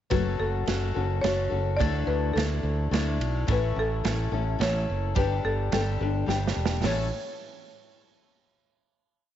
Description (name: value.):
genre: folk rock and heartland rock.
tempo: 107 BPM.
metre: 3/4.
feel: straight.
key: A mixolydian.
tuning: A4 = 441 Hz.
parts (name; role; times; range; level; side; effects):
buzzing marimba with medium hard mallets; melody; 0.1-7.1 s; A4 to D5; -31 LUFS; left 1 dB; none.
picked steel-string acoustic guitar; accompaniment; 0.1-7.1 s; A2 to A4; -30 LUFS; left 8 dB; none.
modern bright fingered electric bass; bass; 0.1-7.1 s; E1 to D2; -28 LUFS; right 1 dB; none.
natural country drum kit; drums; 0.1-7.0 s; hi-hat, kick drum, ride cymbal, snare drum; -31 LUFS; right 5 dB; none.
room: light reverb, studio reverb.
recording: 1960s-style stereo, nothing above 7.6 kHz.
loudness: -24 LUFS.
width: side -11 dB against mid.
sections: 0.1-6.8 verse; 6.8-8.5 final chord.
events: drum fill 6.3-6.8.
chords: 0.1 F#m; 1.8 Dsus2; 3.5 A; 5.2 Gsus2; 6.8 A.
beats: | 0.11 0.67 1.23 | 1.79 2.35 2.91 | 3.47 4.03 4.59 | 5.15 5.71 6.27 | 6.83.